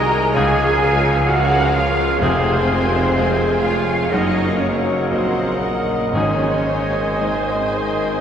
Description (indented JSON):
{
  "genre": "classical",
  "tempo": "57-66 BPM",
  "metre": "4/4",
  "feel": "rubato",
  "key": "Db major",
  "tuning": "A4 = 440 Hz",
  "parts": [
    { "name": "clear grand piano", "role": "melody", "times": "0.0-8.2 s", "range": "F1 to Ab4", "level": "-22 LUFS", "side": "left 1 dB", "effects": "none" },
    { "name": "muted studio violin section", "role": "melody", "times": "0.0-8.2 s", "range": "F5 to Ab5", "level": "-28 LUFS", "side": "left 3 dB", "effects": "none" },
    { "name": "mellow clarinet", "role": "second line", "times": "0.0-8.2 s", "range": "Bb4 to Bb5", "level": "-27 LUFS", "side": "left 1 dB", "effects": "none" },
    { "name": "muted studio violin section", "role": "second line", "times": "0.0-8.2 s", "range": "Bb4 to Bb5", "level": "-26 LUFS", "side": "left 1 dB", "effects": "none" },
    { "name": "muted symphonic viola section", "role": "accompaniment", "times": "0.0-8.2 s", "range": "F4 to Eb5", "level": "-26 LUFS", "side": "right 1 dB", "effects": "none" },
    { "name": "mellow French horn section", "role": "sustained chords", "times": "0.0-8.2 s", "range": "Eb3 to Ab4", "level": "-28 LUFS", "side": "left 1 dB", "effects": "none" },
    { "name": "warm trombone section", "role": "sustained chords", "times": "0.0-8.2 s", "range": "C3 to Ab3", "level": "-29 LUFS", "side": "right 2 dB", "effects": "none" },
    { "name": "dark trumpet", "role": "stabs", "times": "0.0-8.2 s", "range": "Eb5 to F5", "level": "-26 LUFS", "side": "right 2 dB", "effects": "none" },
    { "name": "clear tuba", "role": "bass", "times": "0.0-8.2 s", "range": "F1 to Db2", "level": "-28 LUFS", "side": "right 2 dB", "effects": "none" },
    { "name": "muted symphonic cello section", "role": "bass", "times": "0.0-8.2 s", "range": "Bb3 to Bb4", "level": "-24 LUFS", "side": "right 2 dB", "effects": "none" },
    { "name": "muted symphonic double bass section", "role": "bass", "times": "0.0-8.2 s", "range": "F1 to Db2", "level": "-27 LUFS", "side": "right 2 dB", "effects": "none" },
    { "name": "silver concert flute", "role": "second line", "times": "0.3-6.6 s", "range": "F5 to Ab5", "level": "-35 LUFS", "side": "left 1 dB", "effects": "none" },
    { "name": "mellow bassoon", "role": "accompaniment", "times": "0.3-6.6 s", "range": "C3 to Eb3", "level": "-33 LUFS", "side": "right 2 dB", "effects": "none" },
    { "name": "warm oboe", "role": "second line", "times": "0.4-6.5 s", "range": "Ab4 to Bb4", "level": "-31 LUFS", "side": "equal", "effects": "none" },
    { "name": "timpani", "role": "percussion", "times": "6.1-7.7 s", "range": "Ab2", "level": "-30 LUFS", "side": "left 2 dB", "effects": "none" }
  ],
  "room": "wet cathedral reverb, RT60 5.7 s",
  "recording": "none",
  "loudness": "-15 LUFS",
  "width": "side -8 dB against mid",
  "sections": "0.0-8.2 A section",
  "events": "none",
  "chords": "0.4 Db; 2.2 Fm; 4.1 Gb6; 6.1 Ab",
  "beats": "0.36 1.29 | 2.22 3.17 4.12 5.10 | 6.15 7.18"
}